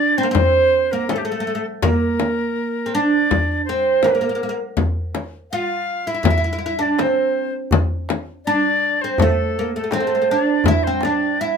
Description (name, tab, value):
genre	Arabic maqam ensemble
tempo	82 BPM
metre	4/4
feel	straight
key	unclear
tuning	A4 = 441 Hz
part	oud	melody	0.0-11.6 s	A3 to F4	-19 LUFS	right 3 dB	none
part	breathy bright silver concert flute	second line	0.0-11.6 s	G4 to F5	-23 LUFS	left 4 dB	none
part	darbuka	percussion	0.2-11.5 s	none	-22 LUFS	equal	none
part	frame drum	percussion	0.3-11.2 s	none	-20 LUFS	left 7 dB	none
room	moderate studio ambience, RT60 0.5 s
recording	minimal, uncompressed stereo recording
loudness	-17 LUFS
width	side -6 dB against mid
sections	0.0-10.7 A section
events	none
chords	none